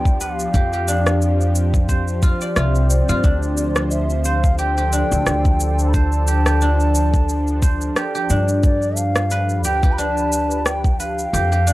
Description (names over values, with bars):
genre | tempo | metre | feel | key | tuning
organic downtempo | 89 BPM | 4/4 | swing 55% on 16ths | D dorian | A4 = 438 Hz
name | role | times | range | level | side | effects
mellow hollow bansuri | melody | 0.0-11.7 s | D5 to B5 | -25 LUFS | equal | analog delay
warm analog pad | sustained chords | 0.0-11.7 s | F3 to D5 | -26 LUFS | equal | chorus, sidechain pumping
guzheng | arpeggios | 0.0-11.7 s | D4 to D5 | -24 LUFS | equal | analog delay
upright bass | bass | 0.0-11.7 s | C2 to G2 | -20 LUFS | equal | sidechain pumping
electronic kick drum | drums | 0.1-11.0 s | none | -16 LUFS | equal | none
electronic shaker and rim click | drums | 0.1-11.7 s | none | -24 LUFS | equal | none
room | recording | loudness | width
small room ambience | dry, gritty hardware recording | -16 LUFS | side -17 dB against mid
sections
0.0-11.7 A section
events
kick drops out 11.3-11.7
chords
0.0 G7; 0.5 Fsus2; 3.2 Dm7; 8.6 G7